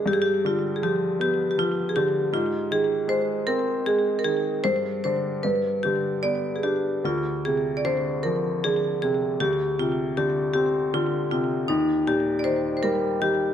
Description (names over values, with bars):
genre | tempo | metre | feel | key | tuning
celtic folk, Celtic slow air | 73-80 BPM | 3/4 | rubato | unclear | A4 = 440 Hz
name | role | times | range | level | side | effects
marimba with hard mallets | melody | 0.0-13.5 s | Eb4 to D5 | -23 LUFS | equal | slapback echo
clear upright piano | accompaniment | 0.0-13.5 s | D2 to D4 | -28 LUFS | left 1 dB | none
room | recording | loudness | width
moderate concert hall reverb, RT60 1.9 s | none | -22 LUFS | side -9 dB against mid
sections
0.0-13.5 A section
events
none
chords
0.1 G7; 2.3 Ab; 4.6 Gsus4; 5.4 G; 7.0 Dm7b5; 9.4 Dm7; 11.7 Eb6